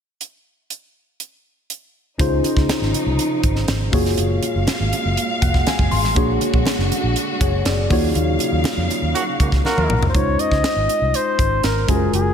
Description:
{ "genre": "polished 1980s jazz-funk pop", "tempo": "121 BPM", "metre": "4/4", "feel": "straight", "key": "Db major", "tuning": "A4 = 440 Hz", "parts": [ { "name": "tight funk drum kit", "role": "drums", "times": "0.2-12.2 s", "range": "hi-hat, kick drum, snare drum, toms", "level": "-21 LUFS", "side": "equal", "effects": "none" }, { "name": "mellow tine electric piano", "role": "accompaniment", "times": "2.2-12.3 s", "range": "Ab3 to C6", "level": "-22 LUFS", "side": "left 1 dB", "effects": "wide subtle chorus, slapback echo" }, { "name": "warm studio string section", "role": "sustained chords", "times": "2.2-10.1 s", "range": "Bb2 to F5", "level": "-25 LUFS", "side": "equal", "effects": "none" }, { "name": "vintage muted fingered electric bass", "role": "bass", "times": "2.2-12.3 s", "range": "F1 to F2", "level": "-21 LUFS", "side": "equal", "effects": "none" }, { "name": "congas", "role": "percussion", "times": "2.2-10.1 s", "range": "none", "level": "-34 LUFS", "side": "right 1 dB", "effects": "none" }, { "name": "mellow horn section", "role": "second line", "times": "9.1-10.0 s", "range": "Db3 to Gb4", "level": "-25 LUFS", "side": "right 3 dB", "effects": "slapback echo" }, { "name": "breathy flugelhorn", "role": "melody", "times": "9.7-12.3 s", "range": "Ab4 to Eb5", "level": "-20 LUFS", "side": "left 1 dB", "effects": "slapback echo, digital delay" } ], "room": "moderate lush hall reverb, RT60 1.8 s, small room ambience", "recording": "big arena sound", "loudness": "-16 LUFS", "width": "side -8 dB against mid", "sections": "0.2-2.2 A section; 2.2-10.1 B section; 10.1-12.3 C section", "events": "tine electric piano fill 5.2-6.2; band accent 8.2-10.1; drum fill 9.6-10.1", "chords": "0.2 N.C.; 2.2 Dbmaj9; 3.9 Gbmaj9; 6.2 Bb7alt; 7.9 Ebm9; 10.1 Dbmaj9", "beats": "| 0.21 0.70 1.20 1.70 | 2.19 2.69 3.18 3.68 | 4.18 4.67 5.17 5.67 | 6.16 6.66 7.16 7.66 | 8.15 8.65 9.15 9.64 | 10.14 10.64 11.14 11.64 | 12.13" }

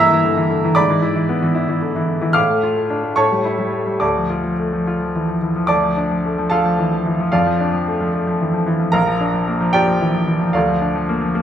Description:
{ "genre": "classical, virtuoso piano study", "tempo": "74 BPM (dotted quarters)", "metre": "6/8", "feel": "rubato", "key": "D minor", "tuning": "A4 = 438 Hz", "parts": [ { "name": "bright baby grand piano", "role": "solo", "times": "0.0-11.4 s", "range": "Bb1 to F6", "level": "-15 LUFS", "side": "equal", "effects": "none" } ], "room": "moderate recital hall reverb, RT60 1.7 s", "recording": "minimal, uncompressed stereo recording", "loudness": "-15 LUFS", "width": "side -9 dB against mid", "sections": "0.0-5.7 A section; 5.7-11.4 A section", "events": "none", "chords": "0.0 Edim/G; 0.8 E7/G#; 2.4 Dm/A; 3.2 A7; 4.0 Dm; 7.3 Dm/F; 8.9 Bb; 10.6 Bb/D", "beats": "| 0.78 1.58 | 2.37 3.19 | 4.02 4.86 | 5.70 6.51 | 7.33 8.13 | 8.94 9.75 | 10.55 11.35" }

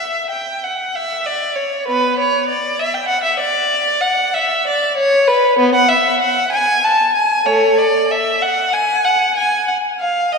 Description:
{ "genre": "classical, baroque-style suite movement for unaccompanied violin", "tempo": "96 BPM", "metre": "3/4", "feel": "rubato", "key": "B minor, F# minor from 5.6 s", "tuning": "A4 = 441 Hz", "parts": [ { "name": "warm violin", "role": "solo", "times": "0.0-10.4 s", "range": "A3 to A5", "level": "-14 LUFS", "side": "equal", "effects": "none" } ], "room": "wet church reverb, RT60 2.8 s", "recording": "minimal, uncompressed stereo recording", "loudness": "-14 LUFS", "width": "side -4 dB against mid", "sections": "0.0-10.4 A section", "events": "none", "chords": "none", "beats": "| 0.01 0.64 1.27 | 1.90 2.51 3.12 | 3.74 4.36 4.99 | 5.61 6.23 6.85 | 7.48 8.11 8.73 | 9.37 10.00" }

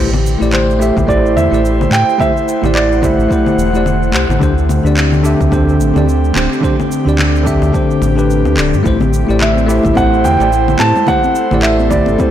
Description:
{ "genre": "sunset chillout", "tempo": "108 BPM", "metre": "4/4", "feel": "swing 58% on 16ths", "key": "A dorian", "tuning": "A4 = 440 Hz", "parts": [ { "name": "bell-like tine electric piano", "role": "accompaniment", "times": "0.0-12.3 s", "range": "D3 to E5", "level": "-16 LUFS", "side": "moving between left 4 dB and right 5 dB", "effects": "auto-pan, tape echo" }, { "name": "airy breathy pad", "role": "sustained chords", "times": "0.0-12.3 s", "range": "D3 to F#5", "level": "-18 LUFS", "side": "equal", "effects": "chorus, vintage 12-bit sampler grit" }, { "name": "round analog bass", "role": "bass", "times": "0.0-12.2 s", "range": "D1 to A2", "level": "-15 LUFS", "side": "equal", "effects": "tube saturation" }, { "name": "electronic congas, cabasa and handclaps", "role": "drums", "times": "0.1-12.3 s", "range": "none", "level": "-20 LUFS", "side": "left 3 dB", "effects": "none" }, { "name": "dark grand piano", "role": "melody", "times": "0.5-4.1, 9.4-12.3 s", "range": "C5 to A5", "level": "-16 LUFS", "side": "right 2 dB", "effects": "vintage 12-bit sampler grit, digital delay" }, { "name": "electronic kick drum", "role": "drums", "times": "1.0-12.3 s", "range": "none", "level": "-18 LUFS", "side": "equal", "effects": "overdrive" }, { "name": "congas", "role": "percussion", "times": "9.0-12.3 s", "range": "none", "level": "-22 LUFS", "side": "left 5 dB", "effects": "none" } ], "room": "light reverb", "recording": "blown-out, overdriven recording, overdrive", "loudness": "-10 LUFS", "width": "side -10 dB against mid", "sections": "0.0-12.3 A section", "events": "none", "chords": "0.0 Am7; 4.4 D7sus4; 8.9 Am7", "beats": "0.52 1.07 1.63 | 2.19 2.74 3.30 3.85 | 4.41 4.96 5.52 6.08 | 6.63 7.19 7.74 8.30 | 8.85 9.41 9.96 10.52 | 11.07 11.63 12.19" }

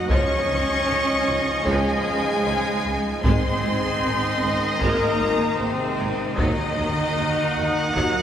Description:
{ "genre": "cinematic, epic orchestral film score", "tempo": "76 BPM", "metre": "4/4", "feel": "straight", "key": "unclear", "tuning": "A4 = 436 Hz", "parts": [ { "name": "rich symphonic violin section", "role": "melody", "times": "0.0-8.2 s", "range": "C5 to Db6", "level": "-31 LUFS", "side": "left 2 dB", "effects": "none" }, { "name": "clear symphonic violin section", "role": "second line", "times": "0.0-8.2 s", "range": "C5 to Db6", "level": "-30 LUFS", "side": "left 1 dB", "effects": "none" }, { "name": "bright symphonic viola section", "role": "accompaniment", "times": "0.0-8.2 s", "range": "Eb3 to Eb4", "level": "-31 LUFS", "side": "equal", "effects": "none" }, { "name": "clear trombone section", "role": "sustained chords", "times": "0.0-8.2 s", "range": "Eb3 to Bb3", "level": "-34 LUFS", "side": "right 2 dB", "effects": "none" }, { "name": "mellow French horn section", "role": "sustained chords", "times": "0.0-8.2 s", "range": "C4 to Db5", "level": "-26 LUFS", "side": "left 2 dB", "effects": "none" }, { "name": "pipe organ, full organ", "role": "sustained chords", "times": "0.0-8.2 s", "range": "Ab3 to Eb5", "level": "-33 LUFS", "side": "equal", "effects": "none" }, { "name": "clear trumpet", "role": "stabs", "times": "0.0-8.2 s", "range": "Eb5 to Gb5", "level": "-29 LUFS", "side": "right 1 dB", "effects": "none" }, { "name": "rich symphonic cello section", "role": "bass", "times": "0.0-8.2 s", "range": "C3 to Db4", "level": "-28 LUFS", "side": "right 2 dB", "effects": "none" }, { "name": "mellow tuba", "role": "bass", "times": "0.1-8.1 s", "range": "Ab1 to Eb2", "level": "-31 LUFS", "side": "right 2 dB", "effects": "none" }, { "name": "rich symphonic double bass section", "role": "bass", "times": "0.1-8.0 s", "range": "Ab1 to Eb2", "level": "-31 LUFS", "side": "right 1 dB", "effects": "none" }, { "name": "taiko ensemble", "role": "drums", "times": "0.1-8.2 s", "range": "none", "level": "-28 LUFS", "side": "equal", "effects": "none" } ], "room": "wet church reverb, RT60 3.8 s", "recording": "recorded in a church or concert hall", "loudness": "-20 LUFS", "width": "side -9 dB against mid", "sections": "0.0-8.2 A section", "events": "none", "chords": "0.1 Dbadd9; 3.2 Ab; 6.4 Ebm", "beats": "| 0.10 0.88 1.67 2.46 | 3.24 4.03 4.81 5.60 | 6.39 7.17 7.96" }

